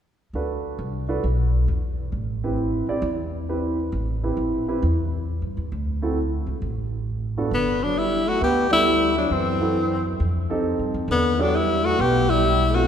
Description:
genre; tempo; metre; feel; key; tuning
jazz; 134 BPM; 4/4; swing 66% on 8ths; G major; A4 = 437 Hz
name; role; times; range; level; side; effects
upright bass; bass; 0.3-12.8 s; G1 to G2; -25 LUFS; equal; none
warm baby grand piano; accompaniment; 0.4-12.9 s; G2 to D5; -27 LUFS; right 2 dB; none
bright tenor saxophone; melody; 7.5-12.9 s; B3 to G4; -21 LUFS; left 2 dB; none
growling trombone; second line; 7.5-12.9 s; D3 to B3; -25 LUFS; right 2 dB; none
room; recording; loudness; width
wet church reverb, RT60 2.8 s; recorded in a church or concert hall; -20 LUFS; side -8 dB against mid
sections
0.3-7.5 A section; 7.5-12.9 B section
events
none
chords
0.3 Bm7; 2.1 Am9; 5.7 D; 7.5 Gmaj9; 9.3 F#m7b5; 10.2 F9; 11.1 Em11

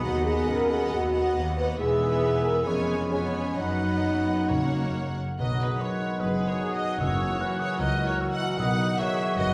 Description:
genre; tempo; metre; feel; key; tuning
classical, dramatic, fast romantic movement for symphony orchestra; 130-154 BPM; 4/4; rubato; B major; A4 = 440 Hz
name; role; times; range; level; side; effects
clear symphonic violin section; melody; 0.0-9.5 s; B4 to G#5; -38 LUFS; equal; none
clear clarinet; second line; 0.0-9.5 s; F#3 to D#5; -40 LUFS; equal; none
mellow concert flute; second line; 0.0-9.5 s; A#5 to F#6; -39 LUFS; equal; none
rich symphonic violin section; second line; 0.0-9.5 s; B4 to F#5; -41 LUFS; equal; none
warm oboe; second line; 0.0-9.5 s; F#4 to E5; -40 LUFS; equal; none
clear symphonic viola section; accompaniment; 0.0-9.5 s; A#3 to G#4; -39 LUFS; equal; none
mellow bassoon; accompaniment; 0.0-9.5 s; D#3 to G#3; -39 LUFS; equal; none
dark French horn section; sustained chords; 0.0-9.5 s; A#3 to B4; -31 LUFS; equal; none
concert harp; arpeggios; 0.0-9.5 s; E#2 to C#6; -39 LUFS; equal; none
clear chamber double bass section; bass; 0.0-9.5 s; E1 to D#2; -36 LUFS; equal; none
clear symphonic cello section; bass; 0.0-9.5 s; C#2 to B2; -37 LUFS; equal; none
timpani; percussion; 4.5-7.6 s; F#2 to B2; -35 LUFS; equal; none
bright trombone section; sustained chords; 5.4-9.5 s; D#3 to F#3; -36 LUFS; equal; none
warm trumpet; stabs; 5.4-9.5 s; F#5; -36 LUFS; equal; none
dark tuba; bass; 5.4-9.5 s; F#1 to C#2; -35 LUFS; equal; none
room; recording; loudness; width
wet recital hall reverb, RT60 1.5 s; recorded in a church or concert hall, vinyl crackle; -26 LUFS; mono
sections
0.0-5.4 A section; 5.4-9.5 B section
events
none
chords
0.0 B/D#; 1.8 E; 2.7 C#7/E#; 3.6 B/F#; 4.5 F#; 5.4 B; 7.0 F#7; 8.6 B

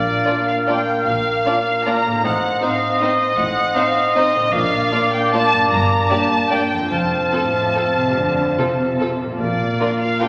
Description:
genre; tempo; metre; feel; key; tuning
classical, orchestral ballroom waltz; 136-171 BPM; 3/4; rubato; Bb major; A4 = 436 Hz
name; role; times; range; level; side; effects
rich symphonic violin section; melody; 0.0-10.3 s; D5 to Bb5; -23 LUFS; equal; none
clear oboe; second line; 0.0-10.3 s; D5 to F5; -25 LUFS; equal; none
warm bassoon; accompaniment; 0.0-10.3 s; Bb3 to C4; -26 LUFS; equal; none
concert harp; arpeggios; 0.0-10.3 s; F2 to F5; -31 LUFS; equal; none
warm symphonic cello section; bass; 0.0-9.7 s; F2 to D3; -29 LUFS; equal; none
warm symphonic double bass section; bass; 0.0-9.7 s; F1 to Bb1; -32 LUFS; equal; none
warm symphonic violin section; second line; 0.3-10.3 s; Eb4 to D5; -29 LUFS; equal; none
warm symphonic viola section; accompaniment; 0.3-10.3 s; Bb3 to F4; -33 LUFS; equal; none
dark French horn section; sustained chords; 0.3-10.3 s; Bb3 to F4; -31 LUFS; equal; none
room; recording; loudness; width
wet scoring stage reverb, RT60 1.9 s; none; -18 LUFS; mono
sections
0.0-10.3 A section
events
none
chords
0.0 Bb; 2.2 Adim7; 4.5 Bb; 5.7 Gm; 6.9 F; 9.4 Bb

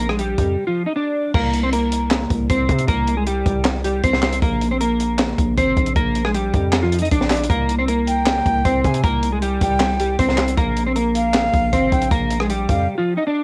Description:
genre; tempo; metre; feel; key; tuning
hip hop, trap; 156 BPM; 4/4; half-time; unclear; A4 = 440 Hz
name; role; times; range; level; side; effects
clean electric guitar; melody; 0.0-13.4 s; F3 to Eb5; -22 LUFS; equal; analog chorus, cassette tape
distorted 808-style bass; bass; 0.0-12.9 s; Ab1 to C3; -25 LUFS; equal; distortion
compact cocktail drum kit; drums; 0.0-12.8 s; crash cymbal, handclaps, hi-hat, kick drum, rim click, snare drum; -24 LUFS; equal; none
breathy jazz flute; second line; 8.1-12.9 s; F5 to Ab5; -25 LUFS; equal; cassette tape, analog delay
room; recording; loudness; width
light reverb, small room ambience; home recording on cassette; -19 LUFS; mono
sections
0.0-1.3 A section; 1.3-13.4 B section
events
drums muted 12.9-13.4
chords
0.0 Bb; 1.3 C5; 4.4 Bb; 7.5 C5; 10.6 Bb5

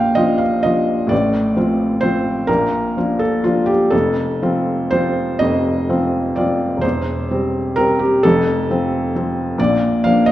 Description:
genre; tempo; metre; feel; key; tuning
classical, romantic nocturne for solo piano; 42 BPM (dotted quarters); 6/8; uneven beats, rubato; unclear; A4 = 440 Hz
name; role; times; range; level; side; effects
felt-muted upright piano; solo; 0.0-10.3 s; E1 to G5; -15 LUFS; equal; none
room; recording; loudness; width
wet recital hall reverb, RT60 1.4 s; heard from further back in the room; -15 LUFS; side -14 dB against mid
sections
0.0-10.3 A section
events
none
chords
0.0 Bb; 1.1 F/A; 2.5 Bb; 3.9 F; 6.8 C/E; 8.2 F; 9.6 Bb

